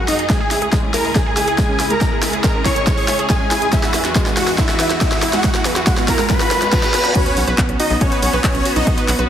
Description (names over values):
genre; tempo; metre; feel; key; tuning
uplifting trance; 140 BPM; 4/4; straight; B major; A4 = 438 Hz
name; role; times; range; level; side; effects
supersaw chords; melody; 0.0-9.0 s; C#4 to C#6; -20 LUFS; equal; sidechain pumping, low-pass filter, tape echo
bright studio string section; sustained chords; 0.0-9.3 s; C#2 to G#4; -26 LUFS; left 2 dB; sidechain pumping
riser, reverse cymbal and sub drop; sound effects; 0.0-8.9 s; none; -27 LUFS; equal; none
wide unison pluck; arpeggios; 0.1-9.2 s; G#3 to F#5; -23 LUFS; right 3 dB; vintage 12-bit sampler grit, sidechain pumping, tape echo
big-room dance drum kit; drums; 0.1-9.3 s; crash cymbal, handclaps, hi-hat, snare drum; -22 LUFS; equal; overdrive, high-pass filter on snare, studio reverb, high-pass filter on hats, high-pass filter on cymbals
electronic kick drum; drums; 0.3-9.0 s; none; -18 LUFS; equal; studio reverb
tight sequencer bass; bass; 7.4-9.3 s; B1; -20 LUFS; equal; sidechain pumping
room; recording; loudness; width
moderate digital room reverb, RT60 1.1 s; heavily compressed radio sound; -14 LUFS; side -10 dB against mid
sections
0.0-7.2 A section; 7.2-9.3 B section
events
build-up 0.0-7.2; drum fill 0.0-7.2; riser 0.0-7.2; reverse cymbal 6.3-7.2; drop 7.2-9.3; impact 7.2-8.9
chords
0.3 C#m; 3.7 Eadd9; 7.2 Bsus2